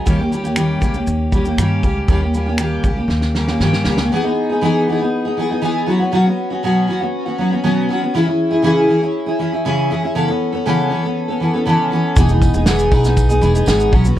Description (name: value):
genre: acoustic pop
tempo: 119 BPM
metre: 4/4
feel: straight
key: unclear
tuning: A4 = 440 Hz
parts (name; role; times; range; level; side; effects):
- picked steel-string acoustic guitar; accompaniment; 0.0-14.2 s; B2 to A4; -16 LUFS; equal; double-tracked left and right
- upright bass; bass; 0.0-4.1, 12.2-14.2 s; E1 to G2; -18 LUFS; equal; none
- natural country drum kit; drums; 0.1-4.1, 12.2-14.2 s; finger snaps, kick drum, shaker, snare drum; -18 LUFS; equal; none
- tambourine; percussion; 12.2-14.0 s; none; -38 LUFS; right 5 dB; none
room: light reverb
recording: worn, warbling old tape, cassette tape, warbly pitch drift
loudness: -14 LUFS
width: side -12 dB against mid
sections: 0.0-4.1 A section; 4.1-14.2 B section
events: drum fill 3.1-4.1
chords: 0.1 D#7; 4.1 Emaj7; 5.9 Bsus2; 8.1 C#m; 10.2 Aadd9/C#; 12.2 Emaj7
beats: | 0.07 0.57 1.08 1.58 | 2.09 2.59 3.10 3.60 | 4.11 4.61 5.11 5.62 | 6.12 6.62 7.13 7.63 | 8.14 8.64 9.14 9.65 | 10.15 10.65 11.16 11.66 | 12.17 12.67 13.17 13.68 | 14.18